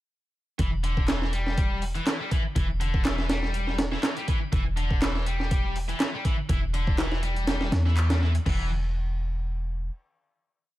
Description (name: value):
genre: breakbeat, breaks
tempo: 122 BPM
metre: 4/4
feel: swing 54% on 16ths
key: E minor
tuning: A4 = 440 Hz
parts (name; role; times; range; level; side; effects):
- scooped high-gain guitar; riff; 0.6-8.7 s; D3 to G3; -32 LUFS; left 1 dB; distortion, tape echo
- warm 808-style bass; bass; 0.6-9.9 s; E1 to E2; -27 LUFS; equal; tube saturation
- breakbeat sampler-style drum kit; drums; 0.6-8.6 s; crash cymbal, hi-hat, kick drum, snare drum; -27 LUFS; equal; small room ambience
- electronic handclaps; drums; 1.1-8.1 s; none; -37 LUFS; equal; small room ambience
room: digital ambience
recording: none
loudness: -24 LUFS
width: side -16 dB against mid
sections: 0.6-8.5 groove; 8.5-10.8 final note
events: band accent 8.0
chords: 0.6 Em; 8.5 N.C.